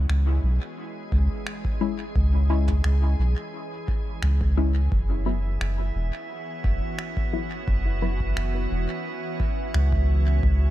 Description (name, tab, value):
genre	ambient dub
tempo	87 BPM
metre	4/4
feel	straight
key	unclear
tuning	A4 = 440 Hz
part	soft additive organ-like pad	sustained chords	0.0-10.7 s	E3 to C#5	-35 LUFS	right 1 dB	ensemble chorus, built-in reverb
part	soft dub sub bass	bass	0.0-10.7 s	E1 to C#2	-21 LUFS	equal	none
part	soft brush drum kit	drums	0.1-9.9 s	finger snaps, toms	-38 LUFS	right 1 dB	dub echo
part	electronic kick drum	drums	1.1-10.6 s	none	-27 LUFS	equal	overdrive
part	filtered dub chord stab	stabs	1.8-8.2 s	F#3 to E4	-31 LUFS	left 5 dB	phaser, dub echo
part	drifting glass-harmonics texture	texture	5.2-10.7 s	E5	-36 LUFS	right 6 dB	chorus, built-in reverb
room	little or no reverb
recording	echo-heavy mix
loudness	-22 LUFS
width	side -14 dB against mid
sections	0.0-10.7 A section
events	none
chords	0.0 C#m; 4.9 F#7sus4